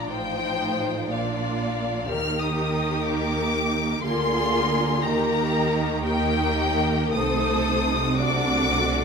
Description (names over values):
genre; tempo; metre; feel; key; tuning
classical, slow romantic movement for string orchestra; 54-62 BPM (dotted quarters); 6/8; rubato; unclear; A4 = 440 Hz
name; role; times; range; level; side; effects
warm studio violin section; melody; 0.0-9.0 s; F5 to F6; -26 LUFS; left 4 dB; none
warm studio violin section; second line; 0.0-9.0 s; F4 to D5; -27 LUFS; left 3 dB; none
rich studio viola section; accompaniment; 0.0-9.0 s; F3 to F4; -28 LUFS; right 4 dB; none
rich studio cello section; bass; 0.0-9.0 s; A2 to Eb3; -30 LUFS; right 2 dB; none
warm studio double bass section; bass; 0.0-9.0 s; A1 to Eb2; -31 LUFS; right 2 dB; none
room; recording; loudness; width
wet recital hall reverb, RT60 1.8 s; none; -21 LUFS; side -5 dB against mid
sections
0.0-9.0 A section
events
none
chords
0.1 F7/A; 1.1 Bb; 2.1 Eb; 4.0 Bb7/D; 5.0 Eb; 7.1 Adim/C; 8.2 D7/C